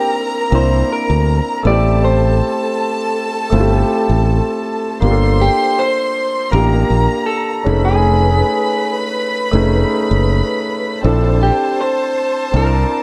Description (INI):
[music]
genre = soul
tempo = 80 BPM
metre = 4/4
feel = swing 54% on 16ths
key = unclear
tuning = A4 = 443 Hz
[part]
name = electric guitar through a small old amp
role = melody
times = 0.0-13.0 s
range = G4 to D5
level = -21 LUFS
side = equal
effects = none
[part]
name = warm studio violin section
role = second line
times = 0.0-13.0 s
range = Bb3 to C6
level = -24 LUFS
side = equal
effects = none
[part]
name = warm concert grand piano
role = accompaniment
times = 0.0-13.0 s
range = G#3 to A5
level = -21 LUFS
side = equal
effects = none
[part]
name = modern bright fingered electric bass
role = bass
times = 0.5-12.8 s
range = F1 to D2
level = -16 LUFS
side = equal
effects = none
[sound]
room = light reverb, small room ambience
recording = dark, warm production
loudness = -15 LUFS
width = mono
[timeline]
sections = 0.0-13.0 A section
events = none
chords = 0.0 Bbadd9; 1.6 Am7; 5.0 Gm9; 7.7 F7alt; 11.0 Bbmaj9#11